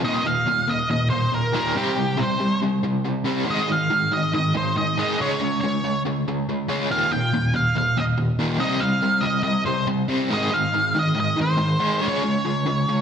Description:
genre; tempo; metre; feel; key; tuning
rock; 140 BPM; 4/4; straight; Eb mixolydian; A4 = 444 Hz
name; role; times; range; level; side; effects
octave-fuzz lead guitar; melody; 0.0-13.0 s; G4 to G5; -23 LUFS; right 1 dB; distortion, slapback echo
overdriven electric guitar; riff; 0.0-13.0 s; Eb2 to Db4; -22 LUFS; equal; tremolo, slapback echo
room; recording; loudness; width
wet scoring stage reverb, RT60 1.7 s, digital ambience; big arena sound; -20 LUFS; side -8 dB against mid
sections
0.1-13.0 A section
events
none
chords
0.1 Eb5; 1.8 C5; 3.5 Ab5; 5.2 Db5; 6.9 Eb; 8.6 C5; 10.3 Ab; 12.0 Db5

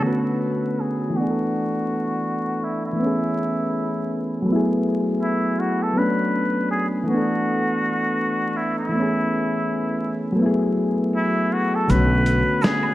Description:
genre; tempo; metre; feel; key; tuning
lo-fi hip hop; 81 BPM; 4/4; swing 60% on 16ths; B dorian; A4 = 440 Hz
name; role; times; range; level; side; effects
trumpet with straight mute; melody; 0.0-12.9 s; E4 to B4; -25 LUFS; equal; low-pass filter
soft electric-piano-like synth keys; accompaniment; 0.0-12.9 s; D3 to A4; -21 LUFS; equal; chorus, cassette tape, low-pass filter
upright bass; bass; 11.9-12.4 s; B1; -19 LUFS; equal; none
dusty soul sampler-style drum kit; drums; 11.9-12.8 s; hi-hat, snare drum; -22 LUFS; equal; none
tube shaker and woodblock; percussion; 11.9-12.9 s; none; -33 LUFS; right 6 dB; none
room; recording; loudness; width
moderate spring reverb, RT60 2.3 s; dark, warm production, vinyl crackle; -20 LUFS; side -15 dB against mid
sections
0.0-11.9 A section; 11.9-12.9 B section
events
filter sweep 0.0-11.9; kick muted 11.9-12.9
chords
0.0 Bm9; 1.1 E7sus4; 3.0 Amaj9/E; 4.5 F#m11; 6.0 Bm9; 7.1 E7sus4; 8.9 Amaj9/E; 10.4 F#m11; 11.9 Bm9

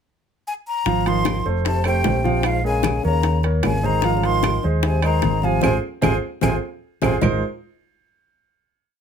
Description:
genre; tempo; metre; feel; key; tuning
Afro-Cuban jazz; 151 BPM; 4/4; straight; Ab major; A4 = 443 Hz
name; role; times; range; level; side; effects
breathy hollow jazz flute; melody; 0.5-7.2 s; F5 to C6; -25 LUFS; left 2 dB; none
warm grand piano; accompaniment; 0.9-7.4 s; F3 to F5; -24 LUFS; right 3 dB; none
fingered electric bass; bass; 0.9-7.4 s; F1 to Eb2; -22 LUFS; equal; none
bongos; percussion; 0.9-7.3 s; none; -26 LUFS; left 9 dB; none
congas; percussion; 0.9-7.3 s; none; -27 LUFS; right 1 dB; none
timbales; percussion; 0.9-7.3 s; none; -28 LUFS; right 6 dB; none
growling trombone; second line; 1.1-7.1 s; Ab2 to Eb3; -27 LUFS; left 5 dB; none
claves; percussion; 1.3-7.3 s; none; -31 LUFS; right 4 dB; none
room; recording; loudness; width
light reverb; none; -18 LUFS; side -7 dB against mid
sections
0.0-0.9 pickup bar; 0.9-7.2 A section; 7.2-8.8 final chord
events
band accent 5.6-7.2; drum fill 6.4-7.2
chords
0.0 N.C.; 0.9 Ab6; 1.7 F; 2.4 Bbm7; 3.2 Eb5; 4.0 Ab69

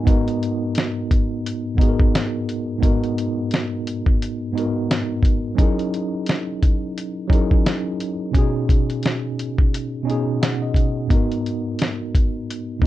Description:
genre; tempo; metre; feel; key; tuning
lo-fi hip hop; 87 BPM; 4/4; swing 58% on 16ths; G# minor; A4 = 438 Hz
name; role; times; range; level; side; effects
mellow tine electric piano; accompaniment; 0.0-12.9 s; G#2 to F#5; -22 LUFS; equal; medium stereo tremolo, cassette tape
lo-fi sampler-style drum kit; drums; 0.1-12.9 s; hi-hat, kick drum, snare drum; -18 LUFS; equal; none
room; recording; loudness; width
light reverb; dark, warm production; -18 LUFS; side -14 dB against mid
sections
0.1-12.9 A section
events
tine electric piano fill 10.1-11.1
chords
0.1 G#m9; 5.6 F#13; 8.3 B69; 11.1 G#m9

